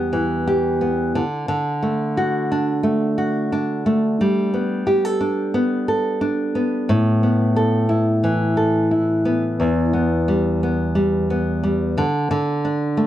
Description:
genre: pop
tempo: 89 BPM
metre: 4/4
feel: straight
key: unclear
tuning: A4 = 439 Hz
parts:
  - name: nylon-string guitar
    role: solo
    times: 0.0-13.1 s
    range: E2 to A4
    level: -17 LUFS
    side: equal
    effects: none
room: moderate studio ambience, RT60 0.5 s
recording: worn, warbling old tape, cassette tape, warbly pitch drift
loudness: -17 LUFS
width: side -12 dB against mid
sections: 0.0-9.6 A section; 9.6-13.1 B section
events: none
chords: 0.0 Em; 1.1 D; 4.2 Gadd9; 6.9 Asus2; 9.6 Em; 12.0 D5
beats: 0.13 0.81 | 1.48 2.16 2.83 3.51 | 4.18 4.86 5.54 6.21 | 6.89 7.56 8.24 8.91 | 9.59 10.27 10.94 11.62 | 12.29 12.97

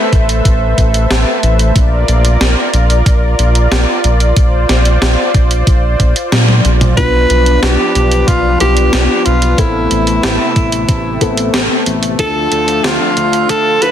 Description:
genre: synthwave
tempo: 92 BPM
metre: 4/4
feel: straight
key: unclear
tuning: A4 = 441 Hz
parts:
  - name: lush unison pad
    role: sustained chords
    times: 0.0-13.9 s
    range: C3 to E5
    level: -17 LUFS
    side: equal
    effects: chorus, sidechain pumping
  - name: round analog bass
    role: bass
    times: 0.1-13.9 s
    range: A1 to Bb2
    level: -13 LUFS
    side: equal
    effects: sidechain pumping
  - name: electronic kick drum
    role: drums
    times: 0.1-13.6 s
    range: none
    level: -13 LUFS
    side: equal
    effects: studio reverb
  - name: gated 80s digital drum machine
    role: drums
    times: 0.1-13.9 s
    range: hi-hat, snare drum, toms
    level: -16 LUFS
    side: equal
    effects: gated reverb, gated reverb snare, studio reverb
  - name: warm tenor saxophone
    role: melody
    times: 7.0-13.9 s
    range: E4 to B4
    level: -14 LUFS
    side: right 1 dB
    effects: ping-pong delay
  - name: dark baby grand piano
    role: stabs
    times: 7.0-13.9 s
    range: B3 to A4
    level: -19 LUFS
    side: left 5 dB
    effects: low-pass filter
room: light reverb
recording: dense, heavily limited modern master, high-pass filter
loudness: -9 LUFS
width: side -10 dB against mid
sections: 0.0-7.0 A section; 7.0-13.9 B section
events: drum fill 6.3-7.0; band accent 6.3-6.6; filter sweep on grand piano 7.0-13.9; filter sweep 7.0-13.9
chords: 0.0 Amadd9; 1.8 Bb; 7.0 Bdim; 9.6 Amadd9; 12.2 Dm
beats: 0.45 1.10 | 1.76 2.41 3.06 3.71 | 4.37 5.02 5.67 6.32 | 6.97 7.63 8.28 8.93 | 9.58 10.23 10.89 11.54 | 12.19 12.84 13.50

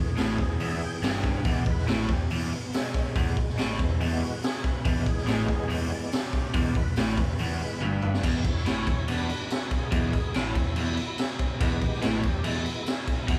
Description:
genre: blues rock power trio and southern rock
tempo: 142 BPM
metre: 4/4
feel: straight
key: E mixolydian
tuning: A4 = 440 Hz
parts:
  - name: overdriven tonewheel organ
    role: sustained chords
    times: 0.0-13.3 s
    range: B2 to G5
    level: -38 LUFS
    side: equal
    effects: slow rotary speaker, chorus vibrato
  - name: overdriven electric guitar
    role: riff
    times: 0.0-13.4 s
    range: E2 to A2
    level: -32 LUFS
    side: equal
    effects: none
  - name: overdriven picked electric bass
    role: bass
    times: 0.0-13.4 s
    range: E1 to A1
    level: -35 LUFS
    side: equal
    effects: none
  - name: raw garage drum kit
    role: drums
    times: 0.2-13.4 s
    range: crash cymbal, hi-hat, kick drum, snare drum, toms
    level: -30 LUFS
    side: equal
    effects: none
room: light reverb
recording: band playing live in one room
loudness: -27 LUFS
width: mono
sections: 0.0-8.2 A section; 8.2-13.4 A section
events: tonewheel organ solo 0.0-13.4; drum fill 7.8-8.2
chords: 0.0 E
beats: 0.18 0.60 1.03 | 1.46 1.88 2.31 2.73 | 3.16 3.58 4.01 4.43 | 4.86 5.28 5.70 6.12 | 6.55 6.97 7.39 7.82 | 8.24 8.66 9.08 9.50 | 9.92 10.34 10.76 11.19 | 11.61 12.02 12.44 12.86 | 13.28

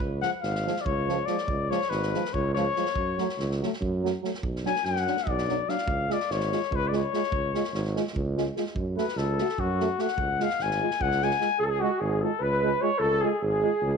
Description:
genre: balkan folk, Balkan brass band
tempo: 292 BPM (eighths)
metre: 7/8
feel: straight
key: C# phrygian dominant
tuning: A4 = 440 Hz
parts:
  - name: warm tuba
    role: bass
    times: 0.0-14.0 s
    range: G#1 to F#2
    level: -30 LUFS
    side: right 2 dB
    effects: none
  - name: unplugged drum kit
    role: percussion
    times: 0.0-11.5 s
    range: kick drum, snare drum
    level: -36 LUFS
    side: right 2 dB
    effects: none
  - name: warm trumpet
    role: second line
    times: 0.2-14.0 s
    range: F#4 to G#5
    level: -28 LUFS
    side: left 8 dB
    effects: none
  - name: clear euphonium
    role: accompaniment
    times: 0.2-13.7 s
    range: E#3 to A3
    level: -33 LUFS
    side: right 13 dB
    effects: none
  - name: mellow euphonium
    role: accompaniment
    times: 0.2-13.7 s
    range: G#3 to F#4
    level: -36 LUFS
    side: left 11 dB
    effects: none
  - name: mellow flugelhorn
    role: melody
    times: 11.6-14.0 s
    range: F#4 to C#5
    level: -26 LUFS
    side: right 2 dB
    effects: none
room: moderate plate reverb, RT60 1.4 s, small room reverb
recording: 1960s-style stereo with parts hard left and right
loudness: -24 LUFS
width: side -6 dB against mid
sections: 0.0-11.6 A section; 11.6-14.0 B section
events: speeding up 0.0-14.0; trumpet solo 0.0-11.6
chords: 0.0 C#; 3.0 F#m; 4.4 Bm; 5.9 C#; 8.8 F#m; 10.2 C#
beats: | 0.01 0.22 0.43 0.64 0.85 1.06 1.28 | 1.49 1.70 1.91 2.12 2.33 2.54 2.75 | 2.96 3.17 3.38 3.59 3.80 4.01 4.22 | 4.43 4.64 4.85 5.05 5.26 5.47 5.68 | 5.88 6.09 6.30 6.50 6.71 6.92 7.12 | 7.33 7.53 7.74 7.94 8.15 8.35 8.56 | 8.76 8.97 9.17 9.37 9.58 9.78 9.98 | 10.19 10.39 10.59 10.79 11.00 11.20 11.40 | 11.60 11.80 12.01 12.21 12.41 12.61 12.81 | 13.01 13.21 13.41 13.61 13.81

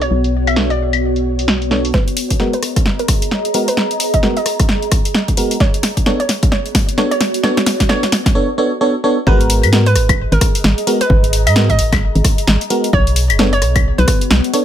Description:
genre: UK garage, two-step garage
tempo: 131 BPM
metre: 4/4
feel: swing 60% on 16ths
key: G# minor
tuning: A4 = 444 Hz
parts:
  - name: hollow square pluck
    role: melody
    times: 0.0-14.2 s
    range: A#4 to E5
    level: -22 LUFS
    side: right 2 dB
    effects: chorus, ping-pong delay
  - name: organ-like FM bass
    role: bass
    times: 0.0-1.9, 9.3-14.4 s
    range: F#1 to G#2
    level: -15 LUFS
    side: equal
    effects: sidechain pumping
  - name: house drum kit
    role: drums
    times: 0.0-14.6 s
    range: claves, hi-hat, rim click, snare drum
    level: -17 LUFS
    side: left 1 dB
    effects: low-pass filter on hats, studio reverb, low-pass filter on perc, low-pass filter on snare
  - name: ethereal airy pad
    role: texture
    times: 0.0-14.6 s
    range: B3 to A#5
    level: -23 LUFS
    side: equal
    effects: ensemble chorus, built-in reverb, sidechain pumping
  - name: FM electric piano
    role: stabs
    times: 0.6-14.6 s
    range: G#3 to C#5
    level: -18 LUFS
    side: right 1 dB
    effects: chorus, low-pass filter, dub echo
  - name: electronic kick drum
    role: drums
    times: 1.9-14.2 s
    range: none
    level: -15 LUFS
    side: equal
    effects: studio reverb
room: light reverb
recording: none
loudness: -12 LUFS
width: side -10 dB against mid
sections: 0.0-1.9 A section; 1.9-9.3 B section; 9.3-14.6 C section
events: build-up 1.9-9.3; drum fill 1.9-8.4; filter sweep on FM electric piano 1.9-9.3; filter sweep on synth pluck 1.9-9.3; drop 9.3-14.6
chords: 0.0 Bm9; 1.9 G#m9; 5.6 Bm9; 9.3 G#m9; 12.9 Bm9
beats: | 0.11 0.56 1.02 1.48 | 1.94 2.40 2.85 3.31 | 3.77 4.23 4.69 5.14 | 5.60 6.06 6.52 6.98 | 7.43 7.89 8.35 8.81 | 9.27 9.72 10.18 10.64 | 11.10 11.56 12.02 12.47 | 12.93 13.39 13.85 14.31

